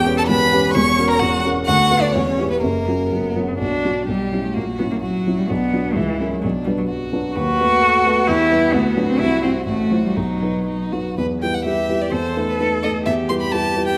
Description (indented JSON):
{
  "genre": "quick classical-period movement for piano trio",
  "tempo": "128 BPM",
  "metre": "2/4",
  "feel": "rubato",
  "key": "B minor, E minor from 7.4 s",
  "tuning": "A4 = 438 Hz",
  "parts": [
    { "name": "rich violin", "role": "melody", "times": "0.0-14.0 s", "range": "D4 to C#6", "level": "-26 LUFS", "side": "equal", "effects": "none" },
    { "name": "rich cello", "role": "second line", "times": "0.0-14.0 s", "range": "E3 to C#5", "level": "-23 LUFS", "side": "equal", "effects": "none" },
    { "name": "dark baby grand piano", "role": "accompaniment", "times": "0.0-14.0 s", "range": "E1 to C5", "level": "-23 LUFS", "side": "equal", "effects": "none" }
  ],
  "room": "wet recital hall reverb, RT60 1.2 s",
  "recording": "none",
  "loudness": "-19 LUFS",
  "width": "mono",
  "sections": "0.0-3.6 A section; 3.6-11.2 B section; 11.2-14.0 C section",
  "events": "none",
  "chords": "0.0 C#m7b5/E; 0.7 F#7/E; 1.7 Bm/D; 2.1 Em; 2.6 F#; 3.6 Bm; 4.1 C#m7b5/B; 4.6 F#7/A#; 5.5 Bm; 6.0 F#7/C#; 6.4 Bm; 7.4 B7/D#; 8.3 Em; 8.7 Bm/D; 9.2 C; 9.7 F#m7b5/A; 10.2 B; 11.2 Em; 12.1 B7/E; 13.1 Em"
}